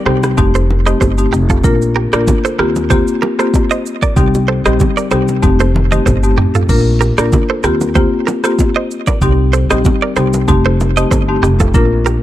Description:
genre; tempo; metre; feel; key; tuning
afrobeats; 95 BPM; 4/4; swing 55% on 16ths; unclear; A4 = 438 Hz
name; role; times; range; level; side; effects
direct-recorded clean electric guitar; riff; 0.0-12.2 s; Eb4 to Eb5; -19 LUFS; right 6 dB; digital delay
marimba with medium mallets; accompaniment; 0.1-12.2 s; G3 to Bb4; -15 LUFS; left 3 dB; none
upright bass; bass; 0.1-12.2 s; F1 to Eb2; -15 LUFS; equal; none
afro-pop drum kit; drums; 0.1-12.2 s; crash cymbal, kick drum, rim click, shaker, toms; -16 LUFS; equal; none
bongos and congas; percussion; 0.2-11.9 s; none; -20 LUFS; right 2 dB; none
room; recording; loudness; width
small room ambience; dark, warm production; -10 LUFS; side -13 dB against mid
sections
0.0-6.7 A section; 6.7-12.2 B section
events
drum fill 5.4-6.7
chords
0.4 F7; 1.6 Bb; 2.6 Eb6; 4.2 Cm; 5.4 F7; 6.7 Bb; 7.6 Eb6; 9.2 Cm; 10.5 F7

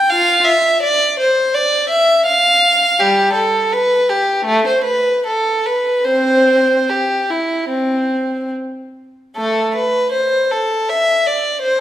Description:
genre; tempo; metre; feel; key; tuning
classical, baroque-style suite movement for unaccompanied violin; 71-84 BPM; 4/4; rubato; C major; A4 = 441 Hz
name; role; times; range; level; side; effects
warm violin; solo; 0.0-11.8 s; G3 to G5; -13 LUFS; equal; none
room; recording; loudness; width
wet recital hall reverb, RT60 1.6 s; recorded in a church or concert hall; -13 LUFS; side -12 dB against mid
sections
0.0-9.4 A section; 9.4-11.8 A section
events
none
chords
none

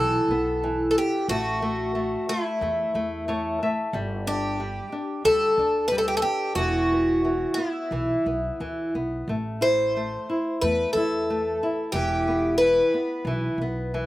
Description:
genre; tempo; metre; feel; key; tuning
fado-style ballad; 91 BPM; 4/4; rubato; E minor; A4 = 440 Hz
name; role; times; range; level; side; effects
picked twelve-string acoustic guitar; melody; 0.0-14.1 s; E4 to C5; -24 LUFS; left 1 dB; none
flamenco guitar; accompaniment; 0.0-14.1 s; E3 to E5; -27 LUFS; equal; slapback echo
upright bass; bass; 0.0-14.1 s; E1 to E2; -32 LUFS; equal; none
room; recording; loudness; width
light reverb; recorded outdoors, with no room sound; -22 LUFS; side -16 dB against mid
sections
0.0-14.1 A section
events
nylon-string guitar fill 3.0-3.9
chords
0.0 Em; 1.3 A5; 3.9 G5; 6.6 E5; 9.3 Am; 11.9 Em

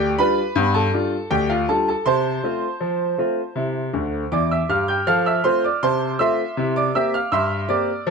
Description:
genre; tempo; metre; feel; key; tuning
ragtime piano; 80 BPM; 2/4; straight; F major; A4 = 440 Hz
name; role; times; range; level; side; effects
bright grand piano; solo; 0.0-8.1 s; D2 to G6; -18 LUFS; equal; none
room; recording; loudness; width
light reverb; none; -18 LUFS; side -5 dB against mid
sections
0.0-8.1 A section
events
grand piano fill 3.9-5.1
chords
0.0 G7; 2.1 F/C; 3.6 C; 5.1 F; 6.6 C7

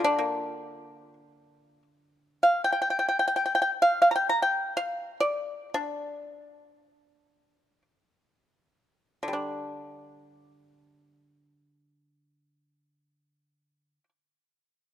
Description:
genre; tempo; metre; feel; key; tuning
chinese traditional, Chinese solo plucked strings; free time; none; none; D jue mode; A4 = 440 Hz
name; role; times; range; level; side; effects
pipa; solo; 0.0-14.1 s; D3 to Bb5; -24 LUFS; equal; none
room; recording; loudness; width
light reverb; close, detailed microphones; -24 LUFS; side -11 dB against mid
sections
0.0-1.6 A section; 1.6-9.3 B section; 9.3-13.9 C section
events
slowing down 5.2-9.3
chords
none

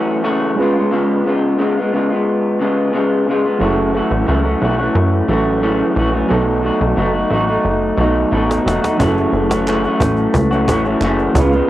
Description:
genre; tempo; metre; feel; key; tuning
indie pop, bedroom pop; 89 BPM; 4/4; straight; F# dorian; A4 = 439 Hz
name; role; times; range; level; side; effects
electric guitar through a small old amp; accompaniment; 0.0-11.7 s; F#2 to F#4; -16 LUFS; left 1 dB; lush chorus, vibrato effect
reed electric piano; accompaniment; 0.0-11.7 s; F#3 to B4; -21 LUFS; right 3 dB; cassette tape
plucky analog bass; bass; 3.6-11.6 s; E#1 to F#2; -19 LUFS; equal; transformer saturation
cajon; drums; 8.5-11.6 s; none; -21 LUFS; equal; cassette tape
group handclap; percussion; 9.7-11.2 s; none; -30 LUFS; right 3 dB; none
room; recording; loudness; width
moderate studio reverb, RT60 0.5 s; home recording on cassette; -13 LUFS; side -14 dB against mid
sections
0.0-9.0 A section; 9.0-11.7 B section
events
drum fill 7.7-9.0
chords
0.0 F#m7; 0.6 C#7; 3.6 F#m7; 6.3 B7; 9.0 F#m7

